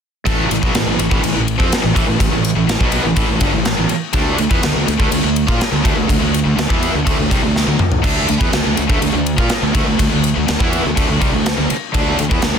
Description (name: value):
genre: hard rock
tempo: 123 BPM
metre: 4/4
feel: straight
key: unclear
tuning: A4 = 439 Hz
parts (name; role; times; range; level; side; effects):
- cranked stack guitar; riff; 0.3-12.6 s; G2 to F4; -24 LUFS; equal; overdrive
- heavy high-gain guitar; riff; 0.3-12.6 s; G2 to F4; -21 LUFS; left 12 dB; distortion
- high-gain distorted guitar; riff; 0.3-12.6 s; G2 to F4; -21 LUFS; right 11 dB; distortion
- fuzz fingered electric bass; bass; 0.3-12.6 s; G1 to Bb2; -22 LUFS; equal; overdrive
- gated 80s drum kit; drums; 0.3-12.5 s; crash cymbal, kick drum, ride cymbal, snare drum, toms; -17 LUFS; equal; none
room: studio reverb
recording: dense, heavily limited modern master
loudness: -13 LUFS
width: side -7 dB against mid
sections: 0.3-12.6 A section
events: drum fill 7.5-8.0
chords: 0.3 A5; 4.1 D5